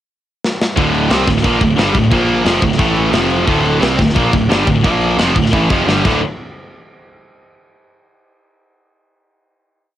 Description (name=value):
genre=heavy metal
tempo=176 BPM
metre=4/4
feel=straight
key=D minor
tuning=A4 = 441 Hz
part: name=tight metal drum kit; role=drums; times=0.4-6.1 s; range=crash cymbal, kick drum, snare drum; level=-17 LUFS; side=equal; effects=cassette tape
part: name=crunchy overdriven guitar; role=riff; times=0.8-6.2 s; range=D2 to C4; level=-18 LUFS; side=left 1 dB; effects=none
part: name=heavy high-gain guitar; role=riff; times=0.8-6.2 s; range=D2 to C4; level=-19 LUFS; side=left 7 dB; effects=distortion
part: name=tight distorted guitar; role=riff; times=0.8-6.2 s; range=D2 to C4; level=-17 LUFS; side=right 5 dB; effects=distortion
part: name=fuzz picked electric bass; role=bass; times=0.8-6.2 s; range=D1 to C2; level=-21 LUFS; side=equal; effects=overdrive
room=light reverb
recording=home recording on cassette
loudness=-12 LUFS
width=side -12 dB against mid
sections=0.0-0.8 pickup bar; 0.8-6.2 riff; 6.2-7.6 final hit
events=drum fill 0.4-0.8, 5.9-6.2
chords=0.0 N.C.; 0.8 Dm; 2.1 Bb5; 2.5 Dm; 2.8 A5; 3.1 F5; 3.5 Dm; 4.8 Bb5; 5.2 Dm; 5.9 G5; 6.1 D5; 6.2 N.C.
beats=0.10 0.43 | 0.77 1.11 1.45 1.78 | 2.12 2.46 2.80 3.14 | 3.48 3.82 4.16 4.50 | 4.85 5.19 5.54 5.88